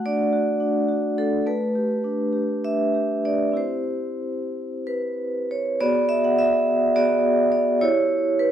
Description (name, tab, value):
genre	classical, contemporary piece for solo vibraphone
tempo	183-214 BPM (eighths)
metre	7/8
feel	rubato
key	B minor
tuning	A4 = 439 Hz
part	vibraphone with medium mallets	solo	0.0-8.5 s	A3 to F#5	-20 LUFS	right 1 dB	none
room	moderate recital hall reverb, RT60 1.4 s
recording	none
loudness	-20 LUFS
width	side -10 dB against mid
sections	0.0-5.8 A section; 5.8-8.5 B section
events	none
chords	0.0 D/A; 1.5 A9sus4; 3.6 Cmaj7; 5.8 Bm6; 7.8 Em